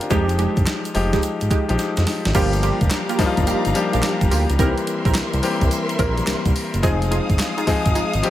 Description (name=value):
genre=R&B, new jack swing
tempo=107 BPM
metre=4/4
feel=swing 66% on 16ths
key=unclear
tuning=A4 = 443 Hz
part: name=clear grand piano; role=accompaniment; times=0.0-8.3 s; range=Eb3 to F5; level=-22 LUFS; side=left 3 dB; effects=none
part: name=crisp 8-bit digital drum machine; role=drums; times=0.0-8.3 s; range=crash cymbal, handclaps, hi-hat, kick drum, snare drum, tambourine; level=-22 LUFS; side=equal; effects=none
part: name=egg shaker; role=percussion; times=0.0-8.3 s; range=none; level=-40 LUFS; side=right 10 dB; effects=none
part: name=funky polysynth comp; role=stabs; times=0.1-8.1 s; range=Ab3 to Bb4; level=-26 LUFS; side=right 4 dB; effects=chorus, digital delay
part: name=smooth synth bass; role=bass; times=0.1-8.2 s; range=F1 to F2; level=-22 LUFS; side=right 1 dB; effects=none
part: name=dark studio string section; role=sustained chords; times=2.4-8.3 s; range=Ab3 to Eb6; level=-28 LUFS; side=left 1 dB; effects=none
room=light reverb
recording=none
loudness=-17 LUFS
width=side -13 dB against mid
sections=0.0-2.3 A section; 2.3-8.3 B section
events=drum fill 1.8-2.3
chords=0.1 Fm9; 2.3 Gm7; 4.6 C7; 6.8 Fm7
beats=| 0.10 0.67 1.23 1.79 | 2.35 2.91 3.47 4.03 | 4.59 5.15 5.71 6.27 | 6.83 7.39 7.96